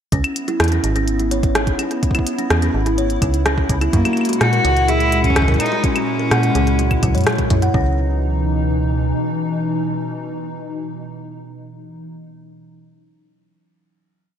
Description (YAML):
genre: IDM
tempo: 126 BPM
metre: 4/4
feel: straight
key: C# dorian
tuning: A4 = 440 Hz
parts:
  - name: hollow soft pad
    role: sustained chords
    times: 0.2-12.1 s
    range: A#2 to E4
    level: -24 LUFS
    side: left 1 dB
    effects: ensemble chorus
  - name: kalimba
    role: arpeggios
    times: 0.1-8.0 s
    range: F#3 to F#5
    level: -24 LUFS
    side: right 1 dB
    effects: low-pass filter, ping-pong delay
  - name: metallic FM bass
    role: bass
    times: 0.1-9.1 s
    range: G#1 to A#2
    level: -19 LUFS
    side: equal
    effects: none
  - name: electronic kick drum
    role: drums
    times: 0.1-7.8 s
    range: none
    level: -19 LUFS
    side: equal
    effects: none
  - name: glitchy drum kit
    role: drums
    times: 0.1-7.7 s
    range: claves, hi-hat, rim click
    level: -22 LUFS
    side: equal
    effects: gated reverb
  - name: rich cello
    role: melody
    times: 3.9-7.3 s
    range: A#3 to F#4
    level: -19 LUFS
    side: left 1 dB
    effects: digital delay
room: moderate lush hall reverb, RT60 1.9 s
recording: bright 1980s-style digital production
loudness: -15 LUFS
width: side -9 dB against mid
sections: 0.1-7.7 groove; 7.7-11.6 final chord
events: none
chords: 0.1 C#m7; 3.9 F#9; 7.7 C#m9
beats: | 0.12 0.60 1.08 1.55 | 2.03 2.50 2.98 3.46 | 3.93 4.41 4.88 5.36 | 5.84 6.31 6.79 7.27 | 7.74 8.22 8.70 9.17 | 9.65 10.12 10.60 11.08